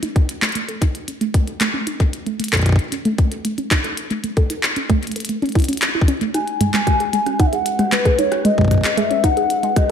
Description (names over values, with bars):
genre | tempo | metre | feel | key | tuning
IDM | 114 BPM | 4/4 | straight | A lydian | A4 = 441 Hz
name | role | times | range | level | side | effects
warbly dusty pluck | arpeggios | 0.0-9.8 s | G#3 to A4 | -22 LUFS | right 1 dB | chorus, digital delay
glitchy drum kit | drums | 0.0-9.9 s | handclaps, hi-hat, rim click, toms | -22 LUFS | left 1 dB | ping-pong delay
electronic kick drum | drums | 0.2-9.9 s | none | -17 LUFS | left 1 dB | none
warbly nostalgic lead | melody | 6.3-9.9 s | B4 to G#5 | -19 LUFS | left 2 dB | lush chorus, ping-pong delay
warbly tape-like pad | sustained chords | 6.3-9.9 s | G#3 to B4 | -31 LUFS | left 2 dB | chorus, built-in reverb
room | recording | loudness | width
moderate lush hall reverb, RT60 1.9 s, digital ambience | none | -16 LUFS | side -8 dB against mid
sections
0.0-9.9 A section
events
filter sweep on synth arpeggio sound 0.0-9.9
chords
0.0 A; 6.3 G#m7